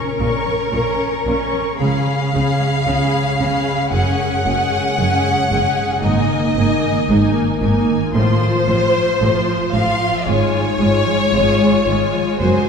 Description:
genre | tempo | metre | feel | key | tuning
cinematic | 57 BPM | 4/4 | rubato | unclear | A4 = 440 Hz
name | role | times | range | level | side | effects
rich studio violin section | melody | 0.0-12.7 s | Ab5 to Db6 | -28 LUFS | left 2 dB | none
rich studio violin section | second line | 0.0-12.7 s | Bb4 to Gb5 | -19 LUFS | left 2 dB | none
rich studio viola section | accompaniment | 0.0-12.7 s | F3 to Bb4 | -21 LUFS | right 1 dB | none
concert harp | arpeggios | 0.0-12.7 s | Gb2 to Db5 | -23 LUFS | left 2 dB | none
clear studio cello section | bass | 0.2-12.5 s | Gb2 to Db3 | -23 LUFS | right 1 dB | none
rich studio double bass section | bass | 0.2-12.5 s | Gb1 to Db2 | -23 LUFS | right 2 dB | none
room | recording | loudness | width
wet scoring stage reverb, RT60 1.8 s | heard from further back in the room | -14 LUFS | side -6 dB against mid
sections
0.0-12.7 A section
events
none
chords
0.0 Bbm; 1.8 Db7; 3.9 Gbsus2; 6.0 Absus2; 8.2 F/A; 10.3 Db/Ab

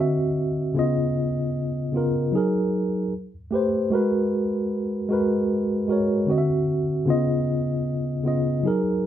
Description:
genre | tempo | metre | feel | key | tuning
R&B | 76 BPM | 4/4 | swing 57% on 16ths | unclear | A4 = 442 Hz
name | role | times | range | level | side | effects
mellow tine electric piano | solo | 0.0-9.1 s | C#3 to E5 | -21 LUFS | equal | medium stereo tremolo
room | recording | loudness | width
wet small room reverb, RT60 0.5 s | rough home demo mix | -21 LUFS | side -10 dB against mid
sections
0.0-9.1 A section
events
none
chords
0.0 D9; 0.8 C#9; 2.3 F#69; 3.1 Am9; 3.9 G#m9; 6.3 D9; 7.1 C#9

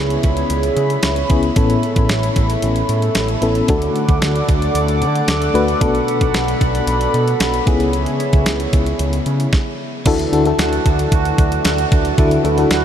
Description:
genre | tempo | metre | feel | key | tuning
1980s-style pop | 113 BPM | 4/4 | straight | unclear | A4 = 440 Hz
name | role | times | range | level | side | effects
FM electric piano with tremolo | accompaniment | 0.0-12.8 s | A2 to B4 | -19 LUFS | left 3 dB | none
chorused pulse-width pad | sustained chords | 0.0-12.8 s | F#4 to D6 | -21 LUFS | right 1 dB | none
overdriven picked electric bass | bass | 0.0-12.8 s | A1 to D3 | -20 LUFS | equal | none
clean 12-bit digital drum machine | drums | 0.1-12.8 s | crash cymbal, hi-hat, kick drum, snare drum | -19 LUFS | right 1 dB | none
clean electric guitar | riff | 10.1-12.8 s | E3 to F#4 | -22 LUFS | right 6 dB | analog chorus, tape echo
group handclap | percussion | 10.6-12.8 s | none | barely audible | none | none
room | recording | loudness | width
moderate huge ambient reverb, RT60 7.8 s | dreamy mix soaked in reverb | -14 LUFS | side -9 dB against mid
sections
0.0-10.1 A section; 10.1-12.8 B section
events
none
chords
0.0 C#m7; 1.6 Aadd9; 3.7 D; 5.8 Bm7; 7.7 C#m7; 10.1 Dadd9

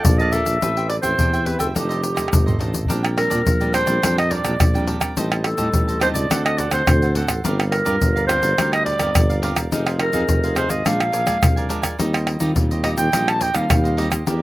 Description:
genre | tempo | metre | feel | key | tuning
samba and choro | 106 BPM | 4/4 | straight | Bb major | A4 = 441 Hz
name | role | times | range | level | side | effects
growling clarinet | melody | 0.0-14.0 s | G4 to A5 | -21 LUFS | right 1 dB | slapback echo
cavaquinho | accompaniment | 0.0-14.4 s | D4 to A5 | -30 LUFS | right 4 dB | slapback echo
nylon-string guitar | accompaniment | 0.0-14.4 s | F2 to B4 | -28 LUFS | left 1 dB | slapback echo
egg shaker, surdo, pandeiro and tamborim | percussion | 0.0-14.4 s | none | -21 LUFS | equal | none
breathy tuba | bass | 0.1-14.4 s | E1 to Eb3 | -23 LUFS | equal | none
room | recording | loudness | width
little or no reverb | recorded outdoors, with no room sound | -17 LUFS | side -17 dB against mid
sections
0.0-2.9 A section; 2.9-14.4 B section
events
drum fill 2.2-2.9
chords
0.0 Bbmaj7; 0.6 Am9; 1.8 F13; 2.9 Bb69; 5.2 Am7b5; 6.3 D7; 7.4 Gm7; 9.7 Fm7; 10.9 Bb7; 12.0 Eb69

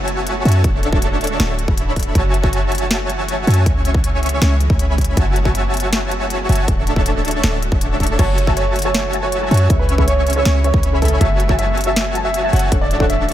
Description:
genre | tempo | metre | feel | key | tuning
future bass | 159 BPM | 4/4 | half-time | F# minor | A4 = 440 Hz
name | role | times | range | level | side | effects
shimmering ambient pad | sustained chords | 0.0-13.3 s | C#3 to C#5 | -27 LUFS | equal | chorus, built-in reverb, sidechain pumping
dense compressed supersaw | riff | 0.0-13.3 s | C#4 to C#6 | -22 LUFS | equal | cassette tape, sidechain pumping
warm 808-style bass | bass | 0.0-13.3 s | D1 to F#2 | -18 LUFS | equal | tube saturation, sidechain pumping
trap drum kit | drums | 0.1-13.3 s | crash cymbal, hi-hat, snare drum | -24 LUFS | left 1 dB | none
electronic kick drum | drums | 0.6-13.1 s | none | -18 LUFS | equal | none
warm grand piano | melody | 8.2-13.3 s | A4 to F#5 | -22 LUFS | right 2 dB | sidechain pumping, digital delay
soft round pluck | accompaniment | 8.2-13.1 s | C#4 to A5 | -24 LUFS | left 1 dB | ensemble chorus, sidechain pumping
room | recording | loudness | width
digital ambience | none | -14 LUFS | side -12 dB against mid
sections
0.0-13.3 A section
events
none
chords
0.0 F#m9; 0.6 Dmaj7; 2.2 F#m9; 3.7 C#m7; 5.2 F#m9; 6.7 Dmaj7; 8.2 F#m9; 9.7 C#m7; 11.2 F#m9; 12.7 Dmaj7

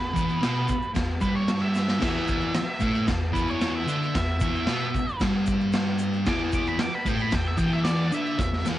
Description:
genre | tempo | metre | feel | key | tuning
garage rock duo or trio | 113 BPM | 4/4 | straight | unclear | A4 = 440 Hz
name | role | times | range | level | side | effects
octave-fuzz lead guitar | melody | 0.0-8.6 s | B4 to D6 | -31 LUFS | right 1 dB | distortion
thick fuzz guitar | riff | 0.0-8.8 s | E2 to D4 | -25 LUFS | equal | distortion, cassette tape
raw garage drum kit | drums | 0.2-8.8 s | crash cymbal, kick drum, snare drum | -28 LUFS | equal | cassette tape
egg shaker | percussion | 0.2-8.8 s | none | -49 LUFS | left 6 dB | none
room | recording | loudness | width
studio ambience | home recording on cassette, nothing above 10.3 kHz | -23 LUFS | side -14 dB against mid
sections
0.0-8.8 A section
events
lead electric guitar solo 0.0-8.8; drum fill 1.8, 8.4-8.8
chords
0.0 E5

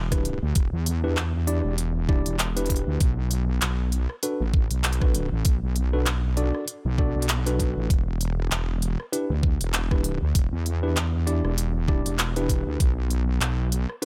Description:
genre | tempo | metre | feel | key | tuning
glitch hop | 98 BPM | 4/4 | swing 57% on 16ths | E minor | A4 = 440 Hz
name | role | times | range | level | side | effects
wobble bass | bass | 0.0-13.9 s | E1 to E2 | -27 LUFS | equal | chorus
tine electric piano | stabs | 0.1-14.1 s | D4 to D5 | -32 LUFS | equal | overdrive, vintage 12-bit sampler grit, sidechain pumping, digital delay
drum and bass drum kit | drums | 0.1-14.1 s | handclaps, hi-hat, rim click | -31 LUFS | equal | none
electronic kick drum | drums | 0.1-12.9 s | none | -25 LUFS | equal | none
room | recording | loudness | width
digital ambience | none | -25 LUFS | mono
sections
0.0-14.1 A section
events
none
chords
0.0 Em7; 3.0 Bm7; 7.9 Em7; 12.8 N.C.

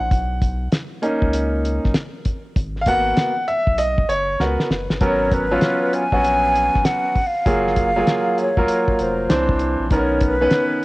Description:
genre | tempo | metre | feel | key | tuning
hip hop, jazz-hop | 98 BPM | 4/4 | swing 64% on 16ths | G# dorian | A4 = 440 Hz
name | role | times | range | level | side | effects
bright grand piano | accompaniment | 0.0-10.8 s | D#3 to F#5 | -20 LUFS | equal | cassette tape
saturated sub bass | bass | 0.0-10.5 s | E#1 to C#2 | -25 LUFS | equal | none
cloth-damped thuddy drum kit | drums | 0.1-10.7 s | hi-hat, kick drum, snare drum | -21 LUFS | equal | vintage 12-bit sampler grit, cassette tape
breathy mellow concert flute | melody | 5.0-10.8 s | B4 to G#5 | -20 LUFS | equal | analog delay
room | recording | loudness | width
light reverb | home recording on cassette | -17 LUFS | side -20 dB against mid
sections
0.0-5.0 A section; 5.0-10.8 B section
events
grand piano solo 0.0-5.0; drum fill 4.4-5.0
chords
0.1 Bmaj9; 2.6 G#m9; 5.0 G#m11; 7.5 F#maj9; 9.3 Cadd9; 9.9 Bmaj9

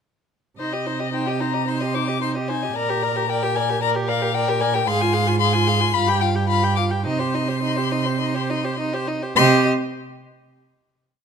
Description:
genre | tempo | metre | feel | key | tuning
quick classical-period movement for string quartet | 102-114 BPM | 4/4 | rubato | C minor | A4 = 440 Hz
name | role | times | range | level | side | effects
rich violin | melody | 0.6-9.7 s | Eb5 to D6 | -23 LUFS | left 9 dB | none
rich violin | second line | 0.6-9.7 s | Bb4 to Ab5 | -27 LUFS | left 4 dB | none
rich viola | accompaniment | 0.6-9.7 s | Eb4 to Bb4 | -25 LUFS | right 2 dB | none
rich cello | bass | 0.6-9.7 s | G2 to C3 | -24 LUFS | right 5 dB | none
room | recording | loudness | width
moderate recital hall reverb, RT60 1.5 s | close, detailed microphones | -19 LUFS | side -7 dB against mid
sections
0.6-9.4 A section; 9.4-11.2 final chord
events
none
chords
0.6 Cm; 2.8 Gm/Bb; 4.9 Fm/Ab; 5.9 G7; 7.1 Cm; 9.4 C5

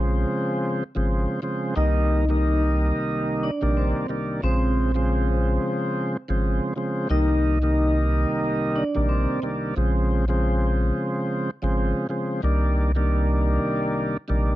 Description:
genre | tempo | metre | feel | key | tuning
hip hop | 90 BPM | 4/4 | swing 58% on 16ths | Bb dorian | A4 = 438 Hz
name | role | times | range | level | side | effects
tonewheel organ | accompaniment | 0.0-14.6 s | C2 to Eb4 | -24 LUFS | equal | slow rotary speaker, high-pass filter, low-pass filter
soft dub sub bass | bass | 0.0-14.6 s | Ab1 to C2 | -22 LUFS | equal | none
vibraphone with soft mallets | melody | 1.8-9.4 s | C4 to Eb5 | -29 LUFS | equal | high-pass filter, low-pass filter, tape echo
room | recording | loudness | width
little or no reverb | dry, gritty hardware recording | -21 LUFS | side -15 dB against mid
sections
0.0-14.6 A section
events
none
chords
0.0 Bbm9; 1.8 Cm9; 4.4 Bbm9; 7.1 Cm9; 9.8 Bbm9; 12.4 Cm9

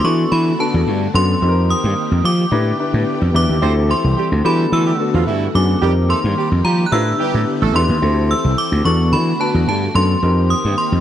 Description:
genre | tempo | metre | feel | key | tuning
funk | 109 BPM | 4/4 | straight | unclear | A4 = 440 Hz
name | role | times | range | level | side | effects
metallic FM bell | melody | 0.0-11.0 s | A5 to F#6 | -21 LUFS | equal | chorus
warm concert grand piano | accompaniment | 0.0-11.0 s | B3 to B4 | -22 LUFS | left 5 dB | none
string machine, violins | sustained chords | 0.0-11.0 s | D3 to G4 | -25 LUFS | equal | ensemble chorus
gritty slap bass | bass | 0.0-11.0 s | A1 to F3 | -16 LUFS | equal | overdrive
clear horn section | second line | 3.6-7.8 s | E3 to C5 | -23 LUFS | right 10 dB | none
room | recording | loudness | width
studio reverb | dry, close 1970s-style studio recording | -14 LUFS | side -11 dB against mid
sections
0.0-11.0 A section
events
none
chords
0.0 E9sus4; 1.4 F9sus4; 2.5 A9sus4; 3.6 D9sus4; 4.4 E9sus4; 5.8 F9sus4; 6.9 A9sus4; 8.0 D9sus4; 8.8 E9sus4; 10.2 F9sus4

